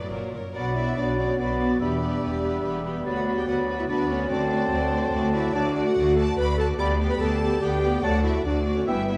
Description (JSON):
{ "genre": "quick classical-period movement for symphony orchestra", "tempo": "144 BPM", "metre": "3/4", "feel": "straight", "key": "B minor, D major from 5.5 s", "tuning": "A4 = 439 Hz", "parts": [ { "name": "rich studio violin section", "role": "melody", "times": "0.0-9.2 s", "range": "B4 to E5", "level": "-39 LUFS", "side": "equal", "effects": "none" }, { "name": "warm studio violin section", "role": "second line", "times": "0.0-9.2 s", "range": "A#4 to D6", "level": "-38 LUFS", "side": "equal", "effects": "none" }, { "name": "rich studio viola section", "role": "accompaniment", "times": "0.0-9.2 s", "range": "F#3 to G4", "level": "-34 LUFS", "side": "equal", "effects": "none" }, { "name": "bright studio cello section", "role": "bass", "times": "0.0-9.2 s", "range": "D2 to B2", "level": "-33 LUFS", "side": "equal", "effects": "none" }, { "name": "warm studio double bass section", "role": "bass", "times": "0.1-9.2 s", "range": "E1 to D2", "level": "-32 LUFS", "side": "equal", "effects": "none" }, { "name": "bright concert flute", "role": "second line", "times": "0.5-9.1 s", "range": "G5 to B5", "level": "-36 LUFS", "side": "equal", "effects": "none" }, { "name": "mellow clarinet", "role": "second line", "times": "0.5-9.2 s", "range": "B3 to D5", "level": "-31 LUFS", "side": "equal", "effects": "none" }, { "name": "warm oboe", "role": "second line", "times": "0.5-9.0 s", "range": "D5 to E5", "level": "-37 LUFS", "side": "equal", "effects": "none" }, { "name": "mellow bassoon", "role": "accompaniment", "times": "0.6-9.0 s", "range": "E3 to G3", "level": "-35 LUFS", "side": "equal", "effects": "none" }, { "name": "mellow French horn section", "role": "sustained chords", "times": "0.6-9.2 s", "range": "A3 to G4", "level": "-32 LUFS", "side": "equal", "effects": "none" } ], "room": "wet recital hall reverb, RT60 1.8 s", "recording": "none", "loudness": "-24 LUFS", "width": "mono", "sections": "0.6-9.2 A section", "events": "none", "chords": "0.1 F#; 0.6 Bm; 1.8 Em7; 3.1 Bm/D; 4.3 D; 6.8 G/D; 8.0 D" }